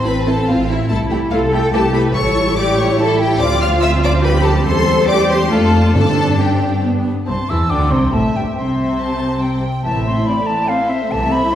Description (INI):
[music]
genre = quick classical-period movement for symphony orchestra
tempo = 142 BPM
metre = 3/4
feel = straight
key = C major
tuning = A4 = 440 Hz
[part]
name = rich studio violin section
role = melody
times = 0.0-11.6 s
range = G4 to F6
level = -24 LUFS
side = left 3 dB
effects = none
[part]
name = rich studio violin section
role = second line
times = 0.0-11.5 s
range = E4 to A5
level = -21 LUFS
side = left 2 dB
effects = none
[part]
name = rich studio viola section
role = accompaniment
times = 0.0-11.5 s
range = E3 to E4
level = -20 LUFS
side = equal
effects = none
[part]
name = rich studio cello section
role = bass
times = 0.0-11.5 s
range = G2 to A4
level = -20 LUFS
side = equal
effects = none
[part]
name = rich studio double bass section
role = bass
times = 0.0-11.5 s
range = G1 to G2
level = -19 LUFS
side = right 1 dB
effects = none
[part]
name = timpani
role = percussion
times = 6.0-6.6 s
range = G2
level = -21 LUFS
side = right 1 dB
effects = none
[part]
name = concert flute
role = second line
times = 7.3-11.5 s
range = E5 to E6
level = -20 LUFS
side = left 1 dB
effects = none
[sound]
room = wet scoring stage reverb, RT60 1.7 s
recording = heard from further back in the room, vinyl crackle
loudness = -13 LUFS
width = side -10 dB against mid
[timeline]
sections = 0.0-7.3 A section; 7.3-11.6 A section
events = none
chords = 0.0 Am; 0.9 Am/C; 2.2 A7; 3.4 Dm7; 4.7 C/E; 5.5 Dm/F; 5.9 Gsus4; 6.8 G; 7.3 C; 9.8 Am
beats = 0.05 0.47 | 0.90 1.31 1.73 | 2.15 2.58 2.99 | 3.41 3.83 4.25 | 4.66 5.09 5.52 | 5.95 6.39 6.83 | 7.28 7.71 8.13 | 8.57 9.00 9.43 | 9.85 10.27 10.69 | 11.11 11.53